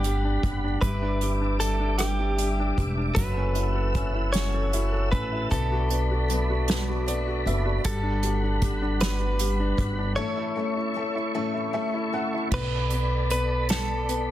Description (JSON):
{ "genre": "six-eight pop ballad", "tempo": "51 BPM (dotted quarters)", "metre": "6/8", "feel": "straight", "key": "B minor", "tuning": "A4 = 443 Hz", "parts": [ { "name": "direct-recorded clean electric guitar", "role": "melody", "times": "0.0-14.3 s", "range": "G4 to C#5", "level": "-30 LUFS", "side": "equal", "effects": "none" }, { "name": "felt-muted upright piano", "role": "accompaniment", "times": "0.0-14.3 s", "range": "F#3 to F#5", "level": "-31 LUFS", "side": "equal", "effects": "none" }, { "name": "tonewheel organ", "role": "sustained chords", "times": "0.0-14.3 s", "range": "G3 to E6", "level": "-34 LUFS", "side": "equal", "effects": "chorus vibrato, slow rotary speaker" }, { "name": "picked steel-string acoustic guitar", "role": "arpeggios", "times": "0.0-12.5 s", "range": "F#2 to B4", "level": "-37 LUFS", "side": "left 7 dB", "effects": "none" }, { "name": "upright bass", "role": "bass", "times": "0.0-14.3 s", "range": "E1 to B1", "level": "-27 LUFS", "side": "equal", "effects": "none" }, { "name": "unplugged drum kit", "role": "drums", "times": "0.0-14.3 s", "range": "crash cymbal, hi-hat, kick drum, rim click, snare drum", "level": "-29 LUFS", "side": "right 1 dB", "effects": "soft clipping on snare" } ], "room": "studio reverb", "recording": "dense, heavily limited modern master", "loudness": "-23 LUFS", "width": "side -13 dB against mid", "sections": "0.0-12.5 A section; 12.5-14.3 B section", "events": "felt piano fill 6.7-7.8, 11.3-12.5; break 10.2-12.5", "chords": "0.0 Gmaj7; 0.8 Em7/G; 3.2 F#m7; 5.5 Bm7; 7.8 Gmaj7; 10.2 A; 12.5 Bm7" }